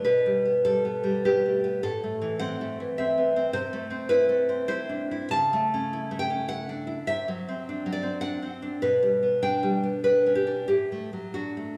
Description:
romantic piece for solo classical guitar; 89-108 BPM; 3/4; rubato; D major from 5.3 s; A4 = 438 Hz
nylon-string guitar; solo; 0.0-11.8 s; A2 to A5; -26 LUFS; equal
wet recital hall reverb, RT60 1.3 s; recorded in a church or concert hall; -26 LUFS; mono
0.0-11.8 A section
0.0 G/B; 1.8 Am; 3.5 Am/C; 5.3 A/C#; 7.1 D7/C; 8.8 G/B; 10.7 D/A
| 0.04 0.64 1.23 | 1.82 2.39 2.97 | 3.53 4.10 4.67 | 5.31 5.90 6.47 | 7.05 7.63 8.20 | 8.79 9.40 10.03 | 10.68 11.35

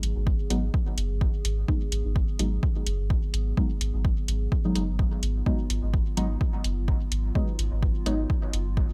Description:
dub techno; 127 BPM; 4/4; swing 55% on 16ths; G# dorian; A4 = 440 Hz
warbly tape-like pad; sustained chords; 0.0-8.9 s; F#3 to G#4; -42 LUFS; equal; chorus, built-in reverb, sidechain pumping
pure sine sub bass; bass; 0.0-8.8 s; F#1 to G#1; -30 LUFS; equal; sidechain pumping
electronic hi-hat; drums; 0.0-8.6 s; -34 LUFS; equal
electronic kick drum; drums; 0.3-8.9 s; -29 LUFS; equal; overdrive
deep mellow chord stab; stabs; 0.5-8.1 s; F#3 to D#4; -34 LUFS; equal; chorus, phaser, cassette tape, sidechain pumping, dub echo
little or no reverb; -26 LUFS; mono
0.0-8.9 A section
0.0 G#m7
0.27 0.74 | 1.21 1.68 2.16 2.63 | 3.10 3.57 4.05 4.52 | 4.99 5.46 5.94 6.41 | 6.88 7.35 7.83 8.30 | 8.77

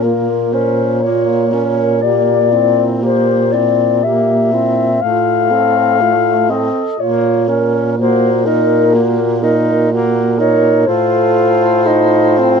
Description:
classical, lyrical piece for single-reed quartet; 61 BPM; 3/4; rubato; Bb minor; A4 = 442 Hz
dark clarinet; melody; 0.0-12.6 s; Bb4 to F5; -14 LUFS; left 6 dB
mellow alto saxophone; second line; 0.0-12.6 s; E4 to Bb4; -18 LUFS; right 8 dB
warm tenor saxophone; accompaniment; 0.0-12.6 s; A3 to F4; -18 LUFS; left 2 dB
warm baritone saxophone; bass; 0.0-12.6 s; A2 to Bb2; -17 LUFS; right 2 dB
moderate studio reverb, RT60 0.5 s; minimal, uncompressed stereo recording; -11 LUFS; side -6 dB against mid
0.0-12.6 A section
0.0 Bbm; 2.0 C7/Bb; 5.0 F/A; 7.0 Bbm; 8.0 Ebm/Bb; 10.9 F7/A
0.04 1.03 | 2.03 3.03 4.03 | 5.03 6.01 7.00 | 7.97 8.93 9.90 | 10.87 11.86

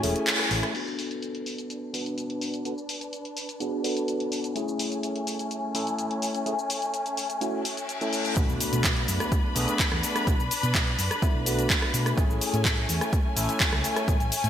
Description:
filtered disco house; 126 BPM; 4/4; straight; B dorian; A4 = 440 Hz
overdriven tine electric piano; accompaniment; 0.0-14.2 s; A3 to B4; -30 LUFS; equal; phaser, sidechain pumping, low-pass filter
clear studio string section; sustained chords; 0.0-14.5 s; A3 to B5; -32 LUFS; left 2 dB; sidechain pumping, low-pass filter
hollow-body short-scale fingered electric bass; bass; 0.0-0.6, 8.4-14.5 s; E1 to B2; -29 LUFS; equal; sidechain pumping, low-pass filter
house drum kit; drums; 0.0-14.5 s; crash cymbal, handclaps, hi-hat, rim click, shaker; -28 LUFS; equal; sidechain pumping on hats, low-pass filter on hats, low-pass filter on snare, sidechain pumping on cymbals, low-pass filter on cymbals, sidechain pumping on perc, low-pass filter on perc, low-pass filter on room, gated reverb
reverse cymbal and impact; sound effects; 7.6-10.3 s; -36 LUFS; left 1 dB
electronic kick drum; drums; 8.4-14.2 s; -26 LUFS; equal; overdrive
moderate lush hall reverb, RT60 1.9 s; bright 1980s-style digital production; -24 LUFS; side -10 dB against mid
0.7-8.4 A section; 8.4-14.5 B section
break 0.0-0.7; band accent 0.3; reverse cymbal 7.6-8.4; drop 8.4-14.5; impact 8.4-10.3
0.0 Amaj7; 0.7 Bm7; 4.6 Amaj7; 8.4 Bm7; 12.2 Amaj7
0.27 | 0.75 1.22 1.70 2.18 | 2.65 3.13 3.60 4.08 | 4.56 5.03 5.51 5.99 | 6.46 6.94 7.42 7.89 | 8.37 8.84 9.32 9.80 | 10.27 10.75 11.22 11.70 | 12.18 12.65 13.13 13.61 | 14.08

